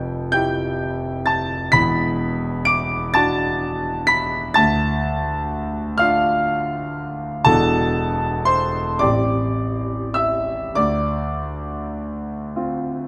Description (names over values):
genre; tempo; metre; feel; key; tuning
classical, impressionist solo piano; 33-44 BPM (dotted quarters); 6/8; rubato; D dorian; A4 = 439 Hz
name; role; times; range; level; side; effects
clear concert grand piano; solo; 0.0-13.1 s; E1 to D7; -21 LUFS; equal; none
room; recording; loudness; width
moderate scoring stage reverb, RT60 1.7 s; close, detailed microphones; -21 LUFS; mono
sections
0.0-13.1 A section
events
none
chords
0.0 Fmaj9; 1.7 E9sus4; 4.6 Dm; 7.5 E9sus4; 9.0 Am7; 10.8 Dm7